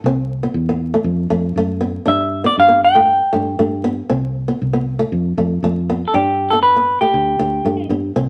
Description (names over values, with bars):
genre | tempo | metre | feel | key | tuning
highlife guitar band | 118 BPM | 4/4 | straight | G mixolydian | A4 = 440 Hz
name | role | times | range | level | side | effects
fingered electric bass | bass | 0.0-8.3 s | C2 to G2 | -23 LUFS | equal | none
flamenco guitar | accompaniment | 0.1-8.3 s | A3 to D4 | -23 LUFS | equal | none
semi-hollow electric guitar | melody | 2.1-7.9 s | G4 to G5 | -16 LUFS | equal | none
room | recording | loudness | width
moderate studio reverb, RT60 0.9 s | vinyl crackle | -17 LUFS | mono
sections
0.0-6.1 A section; 6.1-8.3 B section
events
none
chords
0.0 C; 1.1 F; 2.1 Gadd9; 4.1 Amadd9/C (rootless); 5.1 F; 6.1 Gadd9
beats
| 0.04 0.55 1.05 1.56 | 2.07 2.57 3.08 3.59 | 4.09 4.60 5.11 5.61 | 6.12 6.63 7.13 7.64 | 8.15